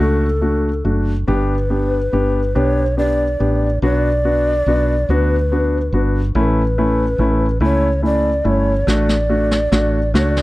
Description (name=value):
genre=six-eight pop ballad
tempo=47 BPM (dotted quarters)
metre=6/8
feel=straight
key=D major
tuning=A4 = 440 Hz
part: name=breathy mellow long shakuhachi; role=melody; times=0.0-10.4 s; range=A4 to D5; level=-20 LUFS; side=equal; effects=none
part: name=warm concert grand piano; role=accompaniment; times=0.0-10.4 s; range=A3 to G4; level=-19 LUFS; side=left 1 dB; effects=none
part: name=woody fretless electric bass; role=bass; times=0.0-10.4 s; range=F#1 to D2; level=-18 LUFS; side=equal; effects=none
part: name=snare drum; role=drums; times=8.9-10.4 s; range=none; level=-20 LUFS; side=equal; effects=none
room=studio ambience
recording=dry, close 1970s-style studio recording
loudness=-14 LUFS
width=side -18 dB against mid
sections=0.0-10.4 A section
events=drum fill 8.9-10.4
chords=0.0 D; 1.3 G; 3.8 Bm; 6.3 A; 8.9 D/A